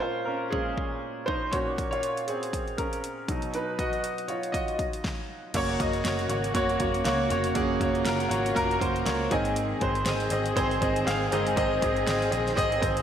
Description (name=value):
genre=piano-driven pop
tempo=120 BPM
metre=4/4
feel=swing 56% on 16ths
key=unclear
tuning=A4 = 440 Hz
part: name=bright grand piano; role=accompaniment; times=0.0-13.0 s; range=Ab2 to Ab5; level=-26 LUFS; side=right 1 dB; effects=lush chorus
part: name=pop drum kit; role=drums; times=0.5-13.0 s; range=crash cymbal, hi-hat, kick drum, snare drum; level=-33 LUFS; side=equal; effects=none
part: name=dark studio string section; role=sustained chords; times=5.5-13.0 s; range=Db3 to Ab4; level=-34 LUFS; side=left 3 dB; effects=none
part: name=vintage muted picked electric bass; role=bass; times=5.5-13.0 s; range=F1 to Db2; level=-33 LUFS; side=left 1 dB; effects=none
part: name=swell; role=sound effects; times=12.4-13.0 s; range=none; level=-39 LUFS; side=left 4 dB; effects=none
room=wet lush hall reverb, RT60 1.7 s, digital ambience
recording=dreamy mix soaked in reverb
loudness=-25 LUFS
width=side -9 dB against mid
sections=0.0-5.5 A section; 5.5-13.0 B section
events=grand piano solo 0.0-5.5; stop 5.0-5.5; grand piano fill 8.6-9.6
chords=0.0 Bbm7; 1.5 Gb/Bb; 3.3 Cb; 5.5 Gb; 9.3 Ab